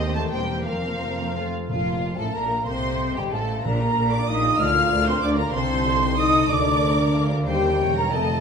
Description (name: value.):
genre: classical.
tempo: 185 BPM.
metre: 3/4.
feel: rubato.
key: Bb major.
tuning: A4 = 439 Hz.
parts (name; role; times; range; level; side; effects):
rich symphonic violin section; melody; 0.0-8.4 s; D4 to A5; -33 LUFS; left 2 dB; none.
warm symphonic violin section; second line; 0.0-8.4 s; F4 to F6; -31 LUFS; equal; none.
warm symphonic viola section; accompaniment; 0.0-8.4 s; A3 to F5; -30 LUFS; right 2 dB; none.
dark French horn section; sustained chords; 0.0-8.4 s; Eb3 to F4; -27 LUFS; left 3 dB; none.
concert harp; arpeggios; 0.0-8.4 s; A2 to F5; -31 LUFS; left 6 dB; none.
rich symphonic cello section; bass; 0.0-8.4 s; C2 to C3; -30 LUFS; right 2 dB; none.
rich symphonic double bass section; bass; 0.0-8.4 s; E1 to Eb2; -28 LUFS; right 3 dB; none.
mellow flute section; second line; 1.7-8.4 s; F5 to F6; -24 LUFS; equal; none.
timpani; percussion; 1.7-4.1 s; Bb2; -32 LUFS; right 2 dB; none.
room: wet recital hall reverb, RT60 1.5 s.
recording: minimal, uncompressed stereo recording.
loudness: -20 LUFS.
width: side -6 dB against mid.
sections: 0.0-1.7 A section; 1.7-8.4 B section.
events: none.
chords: 0.3 C7/E; 0.7 Fsus4; 1.4 F; 1.7 Bb/F; 2.7 F7/C; 3.6 Bb; 4.6 Bb/D; 5.5 Adim/C; 6.5 Bb/D; 7.5 Cm7/Eb; 7.8 Edim7.